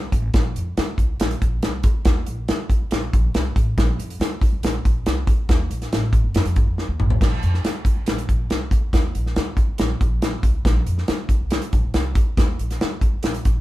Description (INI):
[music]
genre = uptempo 1960s-style soul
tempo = 140 BPM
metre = 4/4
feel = straight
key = Bb major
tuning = A4 = 440 Hz
[part]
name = upright bass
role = bass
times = 0.0-13.6 s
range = G1 to G2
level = -25 LUFS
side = equal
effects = none
[part]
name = natural country drum kit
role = drums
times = 0.1-13.6 s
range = crash cymbal, hi-hat, kick drum, snare drum, toms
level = -19 LUFS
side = equal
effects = none
[sound]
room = light reverb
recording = band playing live in one room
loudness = -18 LUFS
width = side -16 dB against mid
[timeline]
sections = 0.0-7.2 A section; 7.2-13.6 B section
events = drum fill 6.8-7.2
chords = none